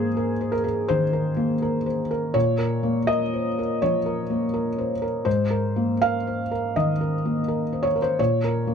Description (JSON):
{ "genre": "neoclassical minimalist piano", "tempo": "83 BPM", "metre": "4/4", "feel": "rubato", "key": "Ab major", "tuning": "A4 = 440 Hz", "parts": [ { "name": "felt-muted upright piano", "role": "solo", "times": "0.0-8.7 s", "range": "Ab2 to F5", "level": "-21 LUFS", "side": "equal", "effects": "none" } ], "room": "moderate studio reverb, RT60 0.5 s", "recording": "dark, warm production", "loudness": "-21 LUFS", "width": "side -7 dB against mid", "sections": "0.0-8.7 A section", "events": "none", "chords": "0.0 Abadd9; 2.4 Bbmadd9; 5.3 Abadd9; 8.2 Bbm" }